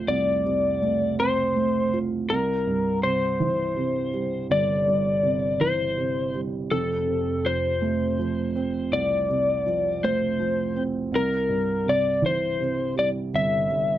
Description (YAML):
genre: pop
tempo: 54 BPM (dotted quarters)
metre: 6/8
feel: straight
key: F major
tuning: A4 = 440 Hz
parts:
  - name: electric slide guitar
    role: melody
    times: 0.0-14.0 s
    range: A4 to E5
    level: -24 LUFS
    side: left 2 dB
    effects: none
  - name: felt-muted upright piano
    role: accompaniment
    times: 0.0-14.0 s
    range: F1 to F4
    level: -26 LUFS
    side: right 3 dB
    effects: none
room: moderate studio reverb, RT60 0.5 s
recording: none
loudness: -22 LUFS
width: side -12 dB against mid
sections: 0.0-14.0 A section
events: none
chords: 0.0 F; 2.3 C; 6.7 F; 11.1 C7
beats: | 0.08 1.18 | 2.29 3.40 | 4.50 5.61 | 6.71 7.82 | 8.92 10.03 | 11.13 12.23 | 13.34